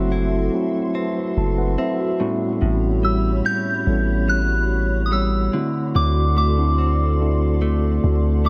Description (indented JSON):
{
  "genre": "R&B",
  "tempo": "72 BPM",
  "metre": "4/4",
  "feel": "straight",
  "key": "unclear",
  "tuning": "A4 = 440 Hz",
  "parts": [
    { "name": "mellow tine electric piano", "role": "accompaniment", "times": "0.0-8.5 s", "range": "F#3 to A5", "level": "-26 LUFS", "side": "equal", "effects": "none" },
    { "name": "glassy FM pad", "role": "sustained chords", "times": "0.0-8.5 s", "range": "G3 to C6", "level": "-32 LUFS", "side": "equal", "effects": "ensemble chorus, built-in reverb" },
    { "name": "direct-recorded clean electric guitar", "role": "arpeggios", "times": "0.0-8.5 s", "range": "A2 to E4", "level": "-28 LUFS", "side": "equal", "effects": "none" },
    { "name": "long sustained 808-style bass", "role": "bass", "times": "0.0-8.5 s", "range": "F#1 to D2", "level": "-22 LUFS", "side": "equal", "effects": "none" },
    { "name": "soft synth bell", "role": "melody", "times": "3.0-8.5 s", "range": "D6 to G6", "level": "-27 LUFS", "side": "equal", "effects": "chorus, phaser, digital delay" }
  ],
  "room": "digital ambience",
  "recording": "none",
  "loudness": "-20 LUFS",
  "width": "mono",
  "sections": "0.0-8.5 A section",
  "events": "tine electric piano fill 0.9-2.6",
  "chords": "0.0 F#m7b5; 2.2 A13; 5.5 D7"
}